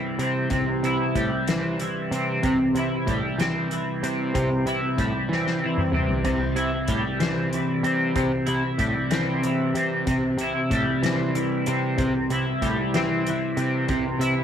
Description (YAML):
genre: psychedelic rock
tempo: 63 BPM (dotted quarters)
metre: 6/8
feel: straight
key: C major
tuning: A4 = 440 Hz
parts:
  - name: twelve-string electric guitar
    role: riff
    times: 0.0-14.4 s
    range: C3 to E4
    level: -23 LUFS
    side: equal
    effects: rotary speaker, double-tracked left and right
  - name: fuzz picked electric bass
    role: bass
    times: 0.2-14.3 s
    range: A2 to E3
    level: -28 LUFS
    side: right 1 dB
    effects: overdrive
  - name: soft-mallet drum kit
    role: drums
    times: 0.2-14.4 s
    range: crash cymbal, hi-hat, kick drum, snare drum, toms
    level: -30 LUFS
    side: left 2 dB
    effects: none
room: light reverb, small room ambience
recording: 1960s-style stereo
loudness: -22 LUFS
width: side -8 dB against mid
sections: 0.0-14.4 A section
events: drum fill 5.3-6.3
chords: 0.0 C